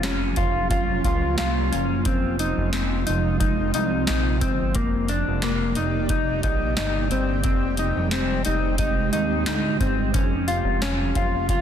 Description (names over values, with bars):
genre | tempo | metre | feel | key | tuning
dream pop | 89 BPM | 4/4 | straight | unclear | A4 = 440 Hz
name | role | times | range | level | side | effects
ethereal airy pad | sustained chords | 0.0-11.6 s | C3 to D5 | -28 LUFS | right 4 dB | ensemble chorus, built-in reverb
mellow electric guitar | arpeggios | 0.0-11.6 s | Bb3 to F4 | -25 LUFS | left 3 dB | analog chorus, ping-pong delay
chorused synth bass | bass | 0.0-11.6 s | F1 to Eb2 | -26 LUFS | equal | none
booming analog drum machine | drums | 0.0-11.6 s | hi-hat, kick drum, snare drum | -26 LUFS | equal | none
room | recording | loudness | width
light reverb, digital ambience | dense, heavily limited modern master | -20 LUFS | side -9 dB against mid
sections
0.0-11.6 A section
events
none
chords
0.0 Gbmaj7/F; 2.1 Fm7; 4.8 Ebmaj7/F; 7.4 Abmaj7/F; 10.1 Gbmaj7/F